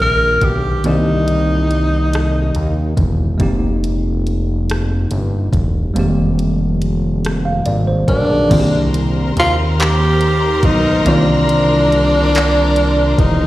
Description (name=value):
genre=slow six-eight R&B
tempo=47 BPM (dotted quarters)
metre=6/8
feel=straight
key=C minor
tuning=A4 = 440 Hz
part: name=breathy tenor saxophone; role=melody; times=0.0-3.0, 8.1-13.5 s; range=D4 to Bb4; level=-16 LUFS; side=equal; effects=slapback echo
part: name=tine electric piano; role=accompaniment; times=0.0-13.5 s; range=Eb3 to G5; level=-19 LUFS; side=right 1 dB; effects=overdrive
part: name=fat analog bass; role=bass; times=0.0-13.5 s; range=E1 to Eb2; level=-17 LUFS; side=equal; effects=none
part: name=smooth R&B drum kit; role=drums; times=0.4-13.4 s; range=crash cymbal, handclaps, hi-hat, kick drum, rim click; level=-18 LUFS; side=equal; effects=none
part: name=bright studio string section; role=sustained chords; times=8.5-13.5 s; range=Bb4 to C6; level=-22 LUFS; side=left 3 dB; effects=none
room=little or no reverb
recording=live gig heard through the venue's PA, recital hall reverb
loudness=-13 LUFS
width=side -16 dB against mid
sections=0.0-8.5 A section; 8.5-13.5 B section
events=none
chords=0.0 Cm9; 3.4 Fm11